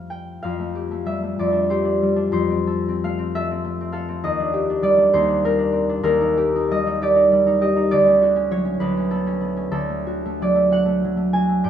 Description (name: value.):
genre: classical, solo harp piece.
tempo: 54-70 BPM (dotted quarters).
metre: 6/8.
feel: rubato.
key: unclear.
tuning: A4 = 438 Hz.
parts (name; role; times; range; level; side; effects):
concert harp; solo; 0.0-11.7 s; D2 to Ab5; -18 LUFS; equal; none.
room: light reverb.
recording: close, detailed microphones.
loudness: -18 LUFS.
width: side -9 dB against mid.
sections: 0.4-11.7 A section.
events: none.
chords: 0.4 Fadd9; 1.4 Dm11/F; 2.3 Fadd9; 4.2 Ebmaj9; 5.1 Cm11/Eb; 6.1 Ebadd9; 7.9 Dmaj7; 8.8 Bm9/D; 9.7 D.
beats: | 0.44 1.38 | 2.33 3.34 | 4.24 5.14 | 6.06 7.03 | 7.92 8.79 | 9.71 10.72 | 11.65.